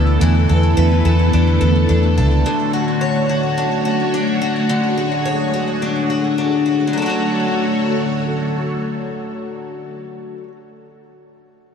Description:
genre	dream pop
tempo	107 BPM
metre	4/4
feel	straight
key	D lydian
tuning	A4 = 441 Hz
part	string machine, full ensemble	sustained chords	0.0-9.9 s	D3 to C#5	-19 LUFS	equal	phaser, ensemble chorus
part	picked twelve-string acoustic guitar	arpeggios	0.0-10.6 s	D3 to C#5	-20 LUFS	left 3 dB	lush chorus, digital delay
part	vintage muted fingered electric bass	bass	0.0-2.4 s	C#2 to E2	-14 LUFS	equal	none
room	moderate huge ambient reverb, RT60 6.0 s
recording	dark, warm production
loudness	-15 LUFS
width	side -7 dB against mid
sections	0.0-6.9 A section; 6.9-9.2 B section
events	none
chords	0.0 E7sus4; 2.4 Dmaj7

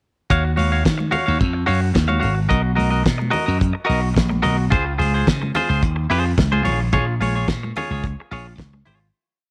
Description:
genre	disco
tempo	109 BPM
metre	4/4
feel	straight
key	Bb minor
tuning	A4 = 441 Hz
part	clean electric guitar	accompaniment	0.3-9.1 s	F4 to F5	-24 LUFS	equal	none
part	slap bass	bass	0.3-9.1 s	Ab1 to Eb3	-23 LUFS	equal	none
part	damped 70s drum kit	drums	0.3-9.0 s	hi-hat, kick drum, snare drum	-24 LUFS	equal	none
part	congas	percussion	0.3-9.0 s	none	-31 LUFS	equal	none
room	light reverb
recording	none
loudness	-19 LUFS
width	mono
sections	0.3-9.1 verse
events	fade-out 6.9-9.1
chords	0.3 Ebm9; 2.5 Bmaj7; 4.7 Dbmaj7; 6.7 Bbm7

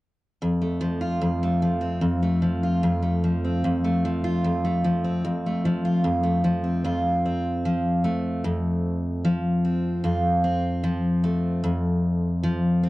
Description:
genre	pop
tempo	75 BPM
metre	4/4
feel	straight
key	F major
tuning	A4 = 438 Hz
part	picked steel-string acoustic guitar	solo	0.4-12.9 s	F2 to F4	-21 LUFS	equal	none
room	light reverb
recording	worn, warbling old tape, cassette tape, warbly pitch drift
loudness	-22 LUFS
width	side -18 dB against mid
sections	0.4-6.8 A section; 6.8-12.9 B section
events	none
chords	0.4 F

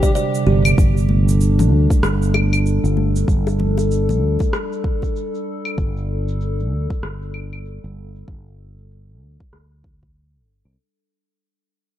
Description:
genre	organic downtempo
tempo	96 BPM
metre	4/4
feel	swing 60% on 16ths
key	unclear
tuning	A4 = 440 Hz
part	warbly tape-like pad	sustained chords	0.0-10.7 s	C3 to A4	-24 LUFS	right 1 dB	chorus, built-in reverb, sidechain pumping
part	kalimba	arpeggios	0.0-0.6 s	G4 to D5	-25 LUFS	right 2 dB	tape echo
part	electronic kick drum	drums	0.0-10.1 s	none	-19 LUFS	equal	none
part	electronic shaker, claves and rim click	drums	0.0-10.8 s	none	-25 LUFS	left 1 dB	low-pass filter on perc, low-pass filter on snare, low-pass filter on room
part	bongos and congas	percussion	0.0-5.1 s	none	-26 LUFS	left 4 dB	none
part	fretless electric bass	bass	0.5-10.8 s	G1 to D2	-18 LUFS	equal	sidechain pumping
room	light reverb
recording	dark, warm production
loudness	-16 LUFS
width	side -12 dB against mid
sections	0.8-10.8 A section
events	fade-out 0.8-10.8; filter sweep on drum 0.8-10.8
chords	0.0 C5; 0.8 G5

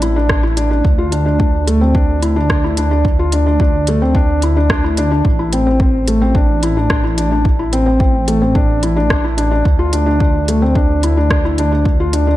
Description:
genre	piano and strings electronica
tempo	109 BPM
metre	4/4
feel	straight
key	unclear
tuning	A4 = 440 Hz
part	felt-muted upright piano	riff	0.0-12.4 s	A3 to F4	-16 LUFS	left 1 dB	ping-pong delay
part	dark detuned saw bass	bass	0.0-12.4 s	A1 to D2	-16 LUFS	equal	sidechain pumping
part	organic electronic drum kit	drums	0.0-12.2 s	hi-hat, rim click	-22 LUFS	equal	none
part	electronic kick drum	drums	0.3-12.0 s	none	-15 LUFS	equal	overdrive
room	light reverb, digital ambience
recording	dark, warm production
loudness	-12 LUFS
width	side -15 dB against mid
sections	0.0-12.4 A section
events	none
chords	0.0 A5; 0.8 N.C.; 5.3 Am; 9.7 N.C.

